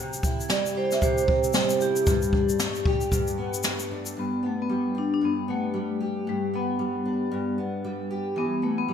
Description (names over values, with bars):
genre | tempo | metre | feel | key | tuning
acoustic pop | 114 BPM | 4/4 | swing 60% on 16ths | G major | A4 = 442 Hz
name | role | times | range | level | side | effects
fingerpicked steel-string acoustic guitar | accompaniment | 0.0-8.9 s | G2 to G4 | -28 LUFS | equal | lush chorus
jazz brush drum kit | drums | 0.1-4.2 s | kick drum, shaker, snare drum | -26 LUFS | left 1 dB | none
vibraphone with medium mallets | melody | 0.5-8.9 s | G3 to E5 | -27 LUFS | left 1 dB | digital delay
room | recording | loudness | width
moderate lush hall reverb, RT60 2.0 s, small room ambience | bright 1980s-style digital production | -23 LUFS | side -8 dB against mid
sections
0.0-4.2 A section; 4.2-8.9 B section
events
none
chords
0.0 C; 2.1 Gadd9; 4.2 G; 8.4 Em